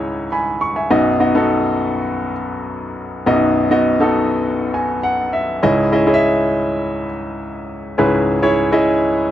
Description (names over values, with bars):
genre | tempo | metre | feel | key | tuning
pop | 102 BPM | 4/4 | straight | unclear | A4 = 440 Hz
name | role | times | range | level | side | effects
clear baby grand piano | solo | 0.0-9.3 s | B1 to C#6 | -15 LUFS | equal | none
room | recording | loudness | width
little or no reverb | dry, close 1970s-style studio recording | -14 LUFS | side -12 dB against mid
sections
0.0-9.3 A section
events
grand piano fill 4.4-5.6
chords
0.0 C#madd9; 0.9 B; 5.6 C#madd9